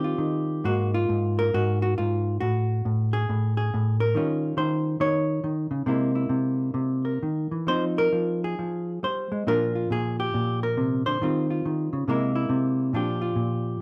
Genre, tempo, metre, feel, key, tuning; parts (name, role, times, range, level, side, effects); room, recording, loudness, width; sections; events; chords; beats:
solo jazz; 126-143 BPM; 4/4; swing 65% on 8ths, rubato; Eb mixolydian; A4 = 440 Hz
hollow-body jazz guitar; solo; 0.0-13.8 s; Ab2 to Db5; -25 LUFS; equal
light reverb; band playing live in one room; -25 LUFS; mono
0.0-13.8 A section
0.0 Eb69; 0.6 Absus2; 2.4 N.C.; 4.2 Eb13; 5.9 C7alt; 7.7 Fm7; 9.5 Bb69; 11.2 Eb13; 12.1 Caug7; 12.9 Bb6
0.19 | 0.64 1.09 1.54 1.98 | 2.42 2.85 3.29 3.72 | 4.15 4.58 5.00 5.43 | 5.87 6.30 6.75 7.21 | 7.68 8.14 8.59 9.04 | 9.48 9.92 10.35 10.79 | 11.22 11.65 12.07 12.49 | 12.92 13.36 13.81